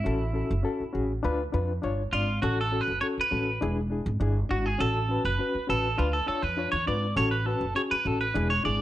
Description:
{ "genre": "uptempo 1960s-style soul", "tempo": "101 BPM", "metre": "4/4", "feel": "straight", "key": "A major", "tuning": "A4 = 440 Hz", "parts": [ { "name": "clean electric guitar", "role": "melody", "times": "0.0-8.8 s", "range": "E4 to D5", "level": "-28 LUFS", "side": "right 2 dB", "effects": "none" }, { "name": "reed electric piano", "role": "accompaniment", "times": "0.0-8.8 s", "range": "C#4 to D5", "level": "-30 LUFS", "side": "left 3 dB", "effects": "overdrive, fast tremolo" }, { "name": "upright bass", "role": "bass", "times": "0.1-8.8 s", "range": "E1 to F2", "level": "-29 LUFS", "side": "right 1 dB", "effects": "none" } ], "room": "light reverb, small room ambience", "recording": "none", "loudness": "-25 LUFS", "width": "side -14 dB against mid", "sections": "0.0-8.8 A section", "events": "clean electric guitar solo 0.0-8.8", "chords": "0.1 A6; 1.2 Dm6; 2.4 A6; 3.6 E7; 4.8 A6; 6.0 Dm6; 7.2 A6", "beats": "| 0.05 0.65 1.24 1.83 | 2.42 3.02 3.61 4.20 | 4.80 5.39 5.98 6.57 | 7.16 7.75 8.34" }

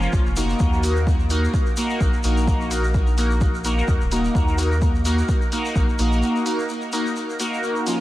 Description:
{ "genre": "dub techno", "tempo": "128 BPM", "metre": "4/4", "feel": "swing 56% on 16ths", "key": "unclear", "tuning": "A4 = 444 Hz", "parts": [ { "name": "resonant sweep polysynth", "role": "stabs", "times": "0.0-8.0 s", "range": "F3 to Bb4", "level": "-23 LUFS", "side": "equal", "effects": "chorus, phaser, sidechain pumping, dub echo" }, { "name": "soft dub sub bass", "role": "bass", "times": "0.0-6.2 s", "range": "Eb1 to Eb2", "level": "-22 LUFS", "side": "equal", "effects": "tube saturation, sidechain pumping" }, { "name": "shekere", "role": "percussion", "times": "0.0-8.0 s", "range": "none", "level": "-36 LUFS", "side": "left 2 dB", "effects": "none" }, { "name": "electronic kick drum", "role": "drums", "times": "0.1-5.9 s", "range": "none", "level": "-21 LUFS", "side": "equal", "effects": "overdrive" }, { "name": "electronic hi-hat", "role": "drums", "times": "0.4-8.0 s", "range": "none", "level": "-32 LUFS", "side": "equal", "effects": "none" } ], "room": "digital ambience", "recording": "vinyl crackle", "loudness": "-18 LUFS", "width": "side -15 dB against mid", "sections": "0.0-8.0 A section", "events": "break 6.2-8.0", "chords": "0.0 Bbm; 0.6 Ebm", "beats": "0.13 | 0.60 1.07 1.54 2.01 | 2.47 2.94 3.41 3.88 | 4.35 4.82 5.29 5.76 | 6.22 6.69 7.16 7.63" }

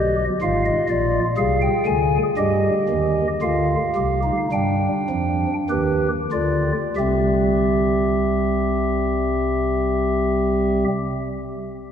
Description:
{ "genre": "classical, baroque-style 3-part fugue for pipe organ", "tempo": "45-64 BPM", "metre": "4/4", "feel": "straight", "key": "unclear", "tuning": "A4 = 440 Hz", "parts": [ { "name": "pipe organ, stopped flute", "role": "solo", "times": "0.0-10.9 s", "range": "Ab1 to Ab5", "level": "-18 LUFS", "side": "equal", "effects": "none" } ], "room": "wet cathedral reverb, RT60 4.4 s", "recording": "none", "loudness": "-18 LUFS", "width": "side -8 dB against mid", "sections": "0.0-7.0 A section; 7.0-11.9 B section", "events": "slowing down 0.0-7.0", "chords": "0.4 Fm/Ab; 2.4 Cm; 4.5 G7; 7.0 C", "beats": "0.42 1.38 | 2.37 3.42 4.52 5.70 | 6.96 8.28 9.58" }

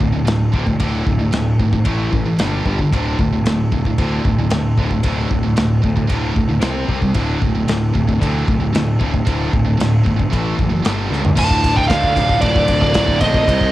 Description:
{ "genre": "heavy metal", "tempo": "114 BPM", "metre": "4/4", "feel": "straight", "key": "D minor", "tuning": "A4 = 441 Hz", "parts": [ { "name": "distorted electric guitar", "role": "riff", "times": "0.0-13.7 s", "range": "D2 to C4", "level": "-22 LUFS", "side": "left 5 dB", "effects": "distortion" }, { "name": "scooped high-gain guitar", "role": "riff", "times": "0.0-13.7 s", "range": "D2 to C4", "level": "-21 LUFS", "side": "right 3 dB", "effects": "distortion" }, { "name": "fuzz picked electric bass", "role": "bass", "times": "0.0-13.7 s", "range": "D1 to D2", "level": "-21 LUFS", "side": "equal", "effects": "overdrive" }, { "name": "modern studio drum kit", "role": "drums", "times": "0.0-13.7 s", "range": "crash cymbal, kick drum, ride cymbal, snare drum, toms", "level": "-20 LUFS", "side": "equal", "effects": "cassette tape" }, { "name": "high-gain lead guitar", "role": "melody", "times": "11.4-13.7 s", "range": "D5 to A5", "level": "-16 LUFS", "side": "right 1 dB", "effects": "distortion, cassette tape" }, { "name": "high-gain lead guitar", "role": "second line", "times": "11.4-13.7 s", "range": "A3 to F4", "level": "-27 LUFS", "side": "right 6 dB", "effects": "distortion, analog delay" }, { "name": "rich studio string section", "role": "sustained chords", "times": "11.4-13.7 s", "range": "Eb3 to D5", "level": "-31 LUFS", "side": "left 1 dB", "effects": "none" } ], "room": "light reverb, small room ambience", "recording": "home recording on cassette", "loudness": "-14 LUFS", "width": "side -15 dB against mid", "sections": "0.0-11.4 A section; 11.4-13.7 B section", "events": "drum fill 11.1", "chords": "0.0 D5; 1.9 A5; 2.4 G5; 2.9 D5; 6.6 C5; 7.1 D5; 10.3 A5; 10.8 G5; 11.4 Dm", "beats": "0.26 | 0.79 1.32 1.85 2.38 | 2.91 3.44 3.97 4.50 | 5.03 5.56 6.09 6.62 | 7.15 7.67 8.20 8.73 | 9.26 9.79 10.31 10.84 | 11.37 11.89 12.42 12.94 | 13.47" }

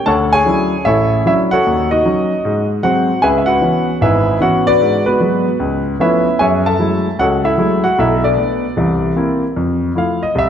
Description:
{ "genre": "solo jazz", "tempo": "152 BPM", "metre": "4/4", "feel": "swing 64% on 8ths", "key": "unclear", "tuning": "A4 = 442 Hz", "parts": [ { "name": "warm grand piano", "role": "solo", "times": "0.0-10.5 s", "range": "G#1 to A5", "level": "-12 LUFS", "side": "equal", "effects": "none" } ], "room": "moderate concert hall reverb, RT60 2.3 s", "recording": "recorded in a church or concert hall", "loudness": "-12 LUFS", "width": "side -8 dB against mid", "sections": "0.0-9.6 A section", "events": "none", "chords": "0.1 Dmaj9; 1.6 D#m7b5; 2.4 G#7; 3.2 C#m7; 4.8 G#m7b5; 5.6 C#7alt; 6.4 F#m9; 8.0 Bm7; 8.8 C7; 9.6 Fmaj7", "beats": "| 0.06 0.46 0.85 1.25 | 1.64 2.04 2.43 2.83 | 3.22 3.62 4.01 4.41 | 4.80 5.20 5.60 5.99 | 6.39 6.78 7.18 7.57 | 7.97 8.37 8.76 9.16 | 9.55 9.95 10.35" }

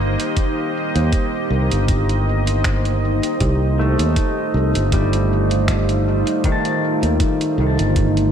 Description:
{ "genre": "ambient dub", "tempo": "79 BPM", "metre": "4/4", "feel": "swing 55% on 16ths", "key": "unclear", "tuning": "A4 = 442 Hz", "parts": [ { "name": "deep dark ambient pad", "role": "sustained chords", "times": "0.0-8.3 s", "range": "A3 to Eb5", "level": "-21 LUFS", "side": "right 1 dB", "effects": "chorus, built-in reverb" }, { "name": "pedal steel guitar", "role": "arpeggios", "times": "0.0-8.3 s", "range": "Eb3 to A5", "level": "-24 LUFS", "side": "left 1 dB", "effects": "dub echo" }, { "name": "fingered electric bass", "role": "bass", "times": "0.0-8.3 s", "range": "G1 to Eb2", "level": "-18 LUFS", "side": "equal", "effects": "none" }, { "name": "lo-fi sampler-style drum kit", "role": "drums", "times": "0.2-8.3 s", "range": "finger snaps, hi-hat", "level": "-27 LUFS", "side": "right 2 dB", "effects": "studio reverb" }, { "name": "electronic kick drum", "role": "drums", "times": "0.4-8.1 s", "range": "none", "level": "-20 LUFS", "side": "equal", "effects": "studio reverb" } ], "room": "light reverb, digital ambience", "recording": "none", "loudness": "-16 LUFS", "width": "side -8 dB against mid", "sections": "0.0-8.3 A section", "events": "none", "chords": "0.0 Cm7; 3.4 F7", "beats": "| 0.37 1.13 1.89 2.65 | 3.40 4.16 4.92 5.68 | 6.44 7.20 7.96" }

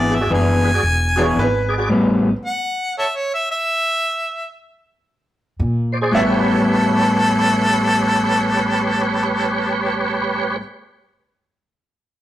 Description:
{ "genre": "blues", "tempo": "114 BPM", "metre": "4/4", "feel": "swing 64% on 8ths", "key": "A mixolydian", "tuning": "A4 = 440 Hz", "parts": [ { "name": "warm harmonica", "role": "melody", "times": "0.0-10.6 s", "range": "D4 to G#5", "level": "-20 LUFS", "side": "left 1 dB", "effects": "none" }, { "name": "electric guitar at the edge of break-up", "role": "riff", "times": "0.0-2.3, 6.1-10.6 s", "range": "A2 to G#4", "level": "-18 LUFS", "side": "left 1 dB", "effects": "none" }, { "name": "upright bass", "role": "bass", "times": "0.0-2.3, 5.6-10.6 s", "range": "E1 to Bb2", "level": "-23 LUFS", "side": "right 1 dB", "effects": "none" }, { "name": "tonewheel organ", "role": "accompaniment", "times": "0.1-1.9, 5.9-10.6 s", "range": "F#4 to D5", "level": "-21 LUFS", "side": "right 2 dB", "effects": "slow rotary speaker, overdrive, chorus vibrato" }, { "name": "bright upright piano", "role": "second line", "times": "1.2-2.3, 6.1-10.6 s", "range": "B4 to E5", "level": "-25 LUFS", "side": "right 3 dB", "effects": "none" } ], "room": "moderate stone room reverb, RT60 1.0 s", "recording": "rough rehearsal-room recording, tube saturation", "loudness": "-16 LUFS", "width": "side -13 dB against mid", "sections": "0.0-6.1 A section; 6.1-10.3 B section", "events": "stop 1.9-5.6", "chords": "0.0 E7; 1.9 A9; 5.6 Bb9; 6.1 A9", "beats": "0.30 0.83 1.36 | 1.89 2.42 2.95 3.48 | 4.01 4.54 5.07 5.60 | 6.12 6.65 7.18 7.71 | 8.23 8.76 9.29 9.81" }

